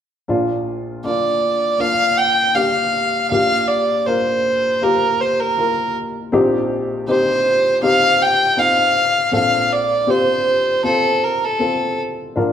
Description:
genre	pop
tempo	80 BPM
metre	4/4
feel	straight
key	Bb major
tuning	A4 = 438 Hz
part	warm upright piano	accompaniment	0.3-12.5 s	Bb1 to C5	-20 LUFS	left 2 dB	none
part	dark violin	melody	1.0-12.0 s	A4 to G5	-16 LUFS	equal	none
room	wet large studio reverb, RT60 1.3 s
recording	band playing live in one room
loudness	-15 LUFS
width	side -9 dB against mid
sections	0.3-12.5 A section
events	none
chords	0.3 Bb; 3.3 Gm7/Bb; 6.3 Cm/Bb; 9.3 F/Bb

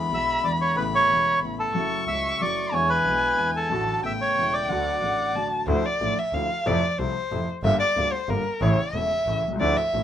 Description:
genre	tango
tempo	184 BPM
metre	3/4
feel	rubato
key	D major, D minor from 5.7 s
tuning	A4 = 440 Hz
part	dark violin	second line	0.0-10.0 s	Bb4 to C#6	-26 LUFS	left 1 dB	none
part	warm baby grand piano	accompaniment	0.0-10.0 s	E1 to F#4	-28 LUFS	left 1 dB	none
part	clear double bass	bass	0.0-10.0 s	E1 to F2	-31 LUFS	right 2 dB	none
part	bandoneon	melody	0.1-5.5 s	A4 to E5	-23 LUFS	right 1 dB	none
room	light reverb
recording	minimal, uncompressed stereo recording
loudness	-21 LUFS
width	side -10 dB against mid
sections	0.0-5.7 A section; 5.7-10.0 B section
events	violin solo 5.7-10.0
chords	0.0 E7; 0.8 Aadd9; 1.7 F#m7; 2.7 E7; 3.7 D/A; 4.0 Aadd9; 4.7 D; 5.7 Dmadd9; 6.7 Fmaj7; 7.6 Gm7; 8.6 A

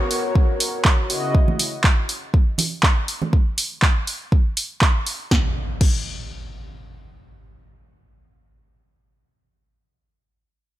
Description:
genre	deep house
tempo	121 BPM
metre	4/4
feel	swing 56% on 16ths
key	unclear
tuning	A4 = 441 Hz
part	warm analog pad	sustained chords	0.0-1.3 s	C#3 to D#5	-26 LUFS	left 1 dB	chorus, sidechain pumping
part	downlifter and impact	sound effects	0.0-1.3, 5.3-10.3 s	none	-33 LUFS	equal	none
part	punchy analog drum machine	drums	0.1-6.0 s	crash cymbal, handclaps, hi-hat, snare drum	-22 LUFS	right 1 dB	none
part	electronic kick drum	drums	0.4-6.0 s	none	-17 LUFS	equal	none
part	congas	percussion	1.5-3.3 s	none	-26 LUFS	right 4 dB	none
room	little or no reverb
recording	none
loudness	-18 LUFS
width	side -14 dB against mid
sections	0.0-5.3 A section; 5.3-9.3 B section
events	none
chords	0.0 G#m11 (rootless); 1.1 C#m11; 5.3 N.C.

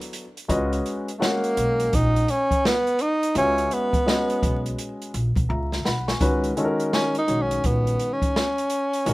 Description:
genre	hip hop, jazz-hop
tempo	84 BPM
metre	4/4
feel	swing 64% on 16ths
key	C# dorian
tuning	A4 = 440 Hz
part	breathy tenor saxophone	melody	0.0-9.1 s	A3 to D#4	-22 LUFS	equal	none
part	dark baby grand piano	accompaniment	0.0-9.1 s	D#3 to C#6	-26 LUFS	left 1 dB	none
part	open jazz drum kit	drums	0.0-9.1 s	hi-hat, kick drum, snare drum	-26 LUFS	equal	none
part	upright bass	bass	0.5-9.1 s	A#1 to C#2	-25 LUFS	equal	none
room	small room reverb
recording	rough home demo mix, vinyl crackle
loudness	-20 LUFS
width	side -19 dB against mid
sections	0.0-6.2 A section; 6.2-9.1 B section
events	drum fill 5.5-6.2; tenor saxophone solo 6.2-9.1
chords	0.5 C#m11; 6.2 C#9sus4

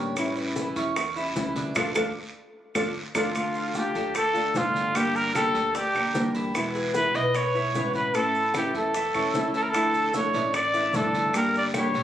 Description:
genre	latin, Cuban son and guajira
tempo	150 BPM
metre	4/4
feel	straight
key	D harmonic minor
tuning	A4 = 440 Hz
part	nylon-string guitar	accompaniment	0.0-12.0 s	B2 to G4	-29 LUFS	equal	none
part	Cuban tres	arpeggios	0.0-12.0 s	C#4 to E5	-32 LUFS	right 1 dB	none
part	upright bass	bass	0.0-12.0 s	G1 to E2	-37 LUFS	left 1 dB	none
part	bongos	percussion	0.2-12.0 s	none	-36 LUFS	left 6 dB	none
part	claves	percussion	0.2-11.9 s	none	-31 LUFS	right 1 dB	none
part	congas	percussion	0.2-12.0 s	none	-38 LUFS	equal	none
part	guiro	percussion	0.2-12.0 s	none	-39 LUFS	right 3 dB	none
part	maracas	percussion	0.2-12.0 s	none	-43 LUFS	right 3 dB	none
part	breathy trumpet	melody	3.2-12.0 s	F4 to Eb5	-25 LUFS	equal	none
room	light reverb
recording	recorded on a phone in the room, studio reverb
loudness	-23 LUFS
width	side -11 dB against mid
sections	0.0-3.4 A section; 3.4-12.0 B section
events	band accent 1.8-3.4; drum fill 2.8-3.4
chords	0.2 A7; 1.8 Dm; 5.0 Gm; 6.5 E; 8.1 A; 9.7 Dmadd9; 11.3 Gm

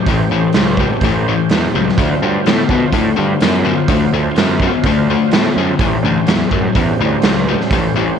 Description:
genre	blues rock power trio and southern rock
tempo	126 BPM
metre	4/4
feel	straight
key	unclear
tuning	A4 = 440 Hz
part	overdriven tonewheel organ	sustained chords	0.0-8.2 s	F#3 to B#4	-22 LUFS	right 14 dB	slow rotary speaker, chorus vibrato
part	distorted electric guitar	riff	0.0-8.2 s	A2 to B3	-16 LUFS	left 9 dB	overdrive
part	fuzz picked electric bass	bass	0.1-8.1 s	A1 to B2	-18 LUFS	right 2 dB	overdrive
part	raw garage drum kit	drums	0.1-7.8 s	hi-hat, kick drum, snare drum	-18 LUFS	right 3 dB	none
room	studio ambience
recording	1960s-style stereo with parts hard left and right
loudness	-12 LUFS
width	side -7 dB against mid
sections	0.0-8.2 A section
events	none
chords	0.0 A7#9; 2.0 D7#9; 5.8 A7#9

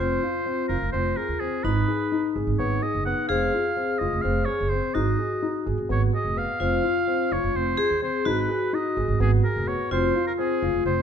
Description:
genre	contemporary instrumental, chamber music in an uneven meter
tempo	254 BPM (eighths)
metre	7/8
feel	straight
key	F phrygian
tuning	A4 = 440 Hz
part	warm oboe	melody	0.0-11.0 s	Ab4 to Gb5	-28 LUFS	right 2 dB	none
part	vibraphone with hard mallets	second line	0.0-11.0 s	Eb4 to Ab4	-28 LUFS	left 3 dB	none
part	dark baby grand piano	arpeggios	0.0-11.0 s	Cb4 to Ab4	-29 LUFS	left 4 dB	none
part	upright bass	bass	0.0-11.0 s	F1 to Eb2	-26 LUFS	right 3 dB	none
room	moderate recital hall reverb, RT60 1.5 s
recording	none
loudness	-22 LUFS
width	side -8 dB against mid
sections	0.0-11.0 A section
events	none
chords	0.0 Fm; 1.6 Abm; 3.3 Fm; 5.0 Abm; 6.6 Fm; 8.3 Abm; 9.9 Fm

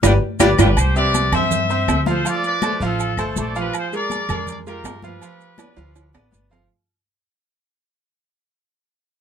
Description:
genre	latin, salsa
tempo	162 BPM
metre	4/4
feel	straight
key	C major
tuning	A4 = 437 Hz
part	warm horn section	melody	0.0-0.7 s	G3 to G4	-19 LUFS	left 2 dB	none
part	bright baby grand piano	accompaniment	0.0-6.7 s	F3 to F5	-24 LUFS	equal	none
part	upright bass	bass	0.0-6.7 s	G1 to G2	-20 LUFS	equal	none
part	claves	percussion	0.0-6.3 s	none	-28 LUFS	left 10 dB	none
part	congas	percussion	0.0-6.7 s	none	-26 LUFS	left 2 dB	none
part	maracas	percussion	0.0-6.7 s	none	-29 LUFS	right 7 dB	none
part	timbales and agogo bells	percussion	0.0-6.7 s	none	-24 LUFS	right 8 dB	none
part	clear trumpet section	melody	0.4-6.3 s	F4 to E5	-23 LUFS	left 2 dB	none
room	light reverb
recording	close, detailed microphones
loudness	-16 LUFS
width	side -8 dB against mid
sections	0.8-6.7 A section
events	band accent 0.0-0.8; drum fill 0.0-0.8, 5.6-6.7; fade-out 0.8-6.7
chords	0.0 G7; 0.8 C; 2.3 Dm7; 3.7 Bb7; 5.2 G7

